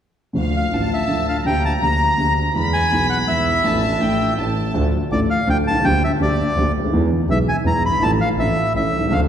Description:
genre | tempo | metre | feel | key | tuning
tango | 165 BPM | 3/4 | rubato | unclear | A4 = 440 Hz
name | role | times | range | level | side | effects
dark upright piano | accompaniment | 0.3-9.3 s | F#1 to A4 | -20 LUFS | equal | none
rich chamber violin section | second line | 0.4-4.8 s | F5 to B5 | -24 LUFS | left 2 dB | none
rich double bass | bass | 0.4-9.3 s | G1 to E2 | -22 LUFS | right 1 dB | none
bandoneon | melody | 0.6-9.2 s | D5 to B5 | -21 LUFS | equal | none
room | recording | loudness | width
wet concert hall reverb, RT60 2.5 s | recorded in a church or concert hall | -16 LUFS | side -9 dB against mid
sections
0.4-4.7 A section; 4.7-9.3 B section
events
none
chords
0.4 Dm; 1.5 Gm/D; 2.5 E; 3.6 Dm/A; 4.4 A; 4.7 Dm; 5.8 Gm/D; 6.9 E; 8.0 Dm/A; 8.8 A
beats
| 0.36 0.73 1.09 | 1.46 1.82 2.19 | 2.55 2.91 3.27 | 3.64 4.00 4.37 | 4.74 5.11 5.48 | 5.84 6.20 6.57 | 6.93 7.29 7.65 | 8.02 8.38 8.75 | 9.12

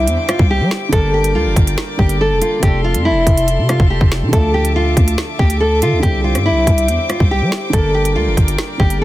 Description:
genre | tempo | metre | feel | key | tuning
hip hop, drill | 141 BPM | 4/4 | half-time | unclear | A4 = 440 Hz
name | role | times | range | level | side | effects
nylon-string guitar | melody | 0.0-9.0 s | E4 to A4 | -18 LUFS | left 1 dB | low-pass filter, digital delay
dark concert grand piano | accompaniment | 0.0-9.0 s | C3 to E5 | -24 LUFS | right 3 dB | low-pass filter
dark studio string section | sustained chords | 0.0-9.0 s | A4 to D6 | -25 LUFS | left 2 dB | none
growling 808-style bass | bass | 0.0-9.0 s | F1 to G3 | -17 LUFS | equal | none
downlifter | sound effects | 0.0-0.9 s | none | barely audible | none | none
drill drum kit | drums | 0.1-9.0 s | finger snaps, hi-hat, kick drum, rim click, snare drum | -14 LUFS | equal | soft clipping on snare
room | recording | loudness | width
little or no reverb | dense, heavily limited modern master | -12 LUFS | side -16 dB against mid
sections
0.0-9.0 A section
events
none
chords
0.0 Cadd9; 0.9 Gm; 2.6 F6; 4.3 Dmadd9; 6.0 Cadd9; 7.7 Gm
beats
0.07 0.50 | 0.93 1.35 1.78 2.20 | 2.63 3.05 3.48 3.90 | 4.33 4.75 5.18 5.61 | 6.03 6.46 6.88 7.31 | 7.73 8.16 8.59 9.01

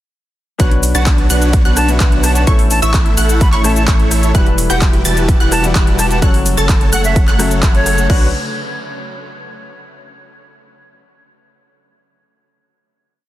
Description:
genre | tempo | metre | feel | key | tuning
EDM, festival progressive house | 128 BPM | 4/4 | straight | B minor | A4 = 440 Hz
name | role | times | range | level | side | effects
bright grand piano | accompaniment | 0.6-8.3 s | A2 to F#5 | -22 LUFS | left 5 dB | sidechain pumping
lush unison pad | sustained chords | 1.2-8.3 s | C#3 to E4 | -25 LUFS | equal | chorus, sidechain pumping
wide unison pluck | arpeggios | 0.6-8.3 s | C#6 to A6 | -24 LUFS | right 1 dB | sidechain pumping, dub echo
dense compressed supersaw | riff | 0.6-8.3 s | D4 to A5 | -21 LUFS | right 1 dB | sidechain pumping, dub echo
saturated sub bass | bass | 0.6-8.3 s | E1 to B1 | -16 LUFS | equal | sidechain pumping
big-room dance drum kit | drums | 0.6-8.2 s | crash cymbal, handclaps, hi-hat, rim click, shaker | -21 LUFS | equal | overdrive
electronic kick drum | drums | 0.6-8.2 s | none | -12 LUFS | equal | overdrive
breathy bright jazz flute | melody | 0.9-8.1 s | C#5 to C#6 | -22 LUFS | equal | dub echo
room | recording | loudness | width
little or no reverb | dense, heavily limited modern master | -10 LUFS | side -14 dB against mid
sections
0.6-8.1 drop; 8.1-10.0 final chord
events
drop 0.6-8.1; band accent 7.6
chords
0.6 Bmadd9; 2.5 A; 4.3 Emadd9; 6.2 F#m; 8.1 Bmadd9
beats
| 0.60 1.07 1.53 2.00 | 2.47 2.94 3.41 3.88 | 4.35 4.82 5.29 5.75 | 6.22 6.69 7.16 7.63 | 8.10

